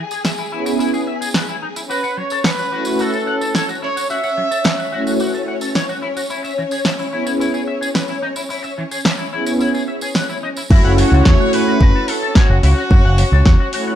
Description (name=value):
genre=nu-disco, nu disco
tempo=109 BPM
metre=4/4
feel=straight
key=F# minor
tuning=A4 = 440 Hz
part: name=warm symphonic string section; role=sustained chords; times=0.0-14.0 s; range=C#4 to G#5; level=-26 LUFS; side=left 2 dB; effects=sidechain pumping, low-pass filter
part: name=electric guitar with an envelope filter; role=riff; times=0.1-13.9 s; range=E3 to F#5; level=-25 LUFS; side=left 3 dB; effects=analog chorus, low-pass filter, ping-pong delay
part: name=tambourine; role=percussion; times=0.1-10.7 s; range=none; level=-31 LUFS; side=right 3 dB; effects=none
part: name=house drum kit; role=drums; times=0.2-13.8 s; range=crash cymbal, hi-hat, snare drum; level=-20 LUFS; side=equal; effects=none
part: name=warm analog pad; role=accompaniment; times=0.5-14.0 s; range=A3 to C#5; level=-20 LUFS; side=equal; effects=chorus, sidechain pumping, ping-pong delay
part: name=bright trumpet section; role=melody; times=1.9-5.2, 10.7-14.0 s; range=E4 to E5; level=-21 LUFS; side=equal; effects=ping-pong delay
part: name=picked electric bass with an envelope filter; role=bass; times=10.7-13.5 s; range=F#1 to F#2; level=-13 LUFS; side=equal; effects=none
part: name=electronic kick drum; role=drums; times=10.7-13.6 s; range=none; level=-12 LUFS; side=equal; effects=none
room=light reverb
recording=dark, warm production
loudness=-14 LUFS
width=side -11 dB against mid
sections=0.0-10.7 A section; 10.7-14.0 B section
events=filter sweep on string section 0.0-10.7; drop 10.7-14.0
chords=0.0 E6; 1.9 F#m7; 6.3 E6; 10.7 F#m7